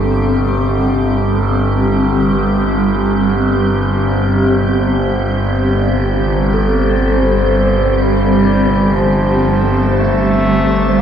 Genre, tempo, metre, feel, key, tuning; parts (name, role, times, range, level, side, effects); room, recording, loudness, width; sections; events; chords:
dark ambient drone; free time; A4 = 440 Hz
clear bass clarinet; melody; 0.0-0.6, 7.9-11.0 s; D3 to A3; -22 LUFS; equal; shimmer reverb, ping-pong delay
granular cloud pad; sustained chords; 0.0-11.0 s; G3 to C5; -15 LUFS; equal; built-in reverb, wide subtle chorus, shimmer reverb
gamelan-type bronze metallophone; arpeggios; 0.0-11.0 s; C3 to A4; -27 LUFS; right 1 dB
overtone-sweeping drone; drone; 0.0-11.0 s; G1; -15 LUFS; equal; chorus, built-in reverb, phaser
icy glass pad; texture; 0.0-11.0 s; G4 to A4; -27 LUFS; right 4 dB; chorus, built-in reverb, shimmer reverb
wet huge ambient reverb, RT60 7.9 s; dreamy mix soaked in reverb; -12 LUFS; side -8 dB against mid
0.0-11.0 A section
fade-in on ambient pad 0.0-11.0; fade-in on bass clarinet 0.0-11.0
0.0 Gsus2